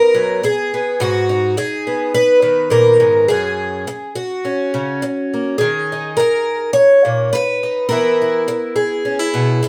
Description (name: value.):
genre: folk, solo fingerstyle acoustic guitar.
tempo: 104 BPM.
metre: 4/4.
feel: straight.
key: unclear.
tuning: A4 = 440 Hz.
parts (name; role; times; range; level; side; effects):
picked twelve-string acoustic guitar; solo; 0.0-9.7 s; F#2 to C#5; -16 LUFS; equal; none.
room: moderate studio reverb, RT60 0.7 s.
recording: band playing live in one room.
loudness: -16 LUFS.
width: mono.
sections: 0.0-9.7 A section.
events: none.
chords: 0.0 B5; 1.0 G#m; 3.3 F#add9; 5.6 D#5; 7.9 E.